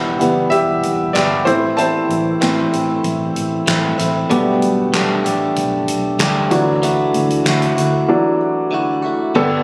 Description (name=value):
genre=piano-driven pop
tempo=95 BPM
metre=4/4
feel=straight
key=unclear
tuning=A4 = 440 Hz
part: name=bright upright piano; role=accompaniment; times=0.0-9.6 s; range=G2 to A5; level=-20 LUFS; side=equal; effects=plate reverb
part: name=direct-recorded clean electric guitar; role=riff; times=0.0-9.6 s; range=A2 to A4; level=-21 LUFS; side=equal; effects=none
part: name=vintage muted fingered electric bass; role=bass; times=0.0-9.6 s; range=E1 to D2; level=-26 LUFS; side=equal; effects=none
part: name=soft-mallet drum kit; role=drums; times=0.2-9.5 s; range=crash cymbal, handclaps, hi-hat, kick drum, snare drum, toms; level=-25 LUFS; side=equal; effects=none
room=light reverb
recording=recorded on a phone in the room, club reverb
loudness=-17 LUFS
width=mono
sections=0.0-9.4 A section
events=upright piano solo 0.0-9.4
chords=0.0 Em; 1.5 Am; 4.3 Gadd9; 6.5 Dadd9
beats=0.52 1.15 | 1.78 2.41 3.04 3.67 | 4.30 4.94 5.57 6.20 | 6.83 7.46 8.09 8.72 | 9.35